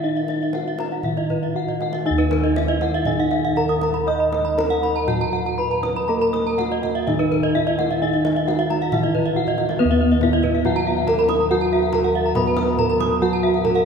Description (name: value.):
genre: Balinese gamelan.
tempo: 119-140 BPM.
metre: 4/4.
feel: straight.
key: Eb pelog.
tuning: A4 = 440 Hz.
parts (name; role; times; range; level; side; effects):
gamelan-type bronze metallophone; melody; 0.0-13.8 s; Cb4-20c to Eb5; -21 LUFS; equal; none.
gamelan-type bronze metallophone; arpeggios; 0.0-13.8 s; Bb4-30c to Eb6; -26 LUFS; left 6 dB; none.
gamelan-type bronze metallophone; arpeggios; 0.0-13.8 s; Cb5-20c to Eb6; -26 LUFS; right 4 dB; none.
gamelan-type bossed gongs; bass; 0.0-13.8 s; Eb2 to Eb5; -25 LUFS; equal; none.
kendang; percussion; 0.2-13.8 s; none; -30 LUFS; left 1 dB; none.
gamelan-type bronze metallophone; accompaniment; 2.1-13.8 s; Eb3 to Eb4; -28 LUFS; right 6 dB; none.
room: wet cathedral reverb, RT60 4.4 s.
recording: recorded in a church or concert hall.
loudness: -18 LUFS.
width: side -6 dB against mid.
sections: 0.0-9.8 A section; 9.8-13.8 B section.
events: drum fill 1.7-2.1, 9.5-9.8.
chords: none.